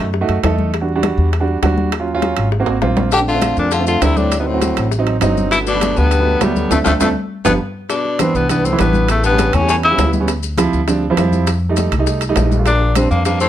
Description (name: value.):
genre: Afro-Cuban jazz.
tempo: 201 BPM.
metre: 4/4.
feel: straight.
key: G major, C major from 7.9 s.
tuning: A4 = 440 Hz.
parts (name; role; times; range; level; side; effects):
breathy tenor saxophone; melody; 0.0-0.1, 3.1-10.1, 12.7-13.5 s; G3 to G4; -18 LUFS; left 1 dB; plate reverb.
clear baritone saxophone; second line; 0.0-0.1, 3.1-10.1, 12.7-13.5 s; D2 to D3; -22 LUFS; left 7 dB; none.
warm grand piano; accompaniment; 0.0-13.4 s; E3 to A4; -19 LUFS; right 4 dB; none.
upright bass; bass; 0.0-13.5 s; G1 to F#2; -18 LUFS; equal; none.
bongos; percussion; 0.0-13.5 s; none; -27 LUFS; left 8 dB; none.
congas; percussion; 0.1-13.5 s; none; -24 LUFS; left 3 dB; none.
timbales; percussion; 0.3-13.4 s; none; -24 LUFS; right 8 dB; none.
maracas; percussion; 3.1-13.5 s; none; -29 LUFS; left 10 dB; none.
room: moderate studio reverb, RT60 0.6 s.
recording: none.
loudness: -13 LUFS.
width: side -11 dB against mid.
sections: 0.0-7.9 A section; 7.9-13.5 B section.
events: drum fill 2.7-3.1, 7.2-7.9; band accent 6.7-7.9.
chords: 0.0 B7 (rootless); 0.7 Em7; 1.9 Ebm7; 2.5 Ab9; 3.1 Bbmaj9; 4.3 D7b9; 5.5 Gmaj7; 6.7 Dm7; 7.3 G7; 7.9 Cmaj9; 9.1 A7; 10.3 Dm11; 11.5 F9; 12.7 Bb69.